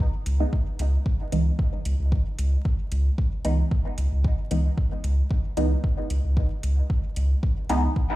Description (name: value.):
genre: dub techno.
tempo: 113 BPM.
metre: 4/4.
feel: straight.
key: C# minor.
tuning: A4 = 436 Hz.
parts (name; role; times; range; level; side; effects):
soft dub sub bass; bass; 0.0-7.9 s; C#2; -22 LUFS; equal; tube saturation, sidechain pumping.
electronic kick drum; drums; 0.0-8.1 s; none; -24 LUFS; equal; overdrive.
electronic hi-hat; drums; 0.3-7.8 s; none; -42 LUFS; equal; overdrive.
filtered dub chord stab; stabs; 0.4-8.0 s; E3 to D#4; -30 LUFS; right 1 dB; phaser, sidechain pumping, dub echo.
room: little or no reverb.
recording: played on a big sound system in a bare room, large studio reverb, vinyl crackle.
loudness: -22 LUFS.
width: side -16 dB against mid.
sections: 0.0-8.2 A section.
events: none.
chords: 0.0 C#m9.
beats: 0.00 0.53 | 1.06 1.59 2.12 2.65 | 3.18 3.71 4.24 4.78 | 5.31 5.84 6.37 6.90 | 7.43 7.96.